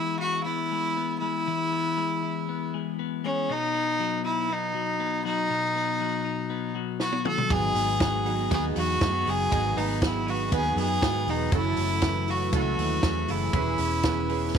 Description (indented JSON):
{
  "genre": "jangly indie pop",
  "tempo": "119 BPM",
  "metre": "4/4",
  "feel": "straight",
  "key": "E major",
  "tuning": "A4 = 437 Hz",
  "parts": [
    { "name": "bright violin", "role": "melody", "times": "0.0-14.6 s", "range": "C#4 to A4", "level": "-27 LUFS", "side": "equal", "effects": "none" },
    { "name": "twelve-string electric guitar", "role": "arpeggios", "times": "0.0-14.6 s", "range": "F#2 to G#4", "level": "-31 LUFS", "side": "left 12 dB", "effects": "tape echo" },
    { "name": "compact cocktail drum kit", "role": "drums", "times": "7.0-14.6 s", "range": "hi-hat, kick drum, ride cymbal, snare drum, toms", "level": "-29 LUFS", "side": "right 1 dB", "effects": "none" },
    { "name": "fingerpicked steel-string acoustic guitar", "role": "accompaniment", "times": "7.5-14.6 s", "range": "F#2 to G#4", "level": "-37 LUFS", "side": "right 11 dB", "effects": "none" },
    { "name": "warm analog keys", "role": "accompaniment", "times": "7.5-14.6 s", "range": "B3 to B4", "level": "-32 LUFS", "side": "right 13 dB", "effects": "chorus" },
    { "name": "vintage muted fingered electric bass", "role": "bass", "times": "7.5-14.6 s", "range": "E1 to G#2", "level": "-30 LUFS", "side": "equal", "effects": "none" }
  ],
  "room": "light reverb",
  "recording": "1960s-style stereo with parts hard left and right",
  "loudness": "-24 LUFS",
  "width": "side -7 dB against mid",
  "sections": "0.0-14.6 A section",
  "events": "drum fill 7.0-7.5",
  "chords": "0.0 E; 3.5 B; 7.5 G#m7; 11.5 F#m7; 13.5 E6"
}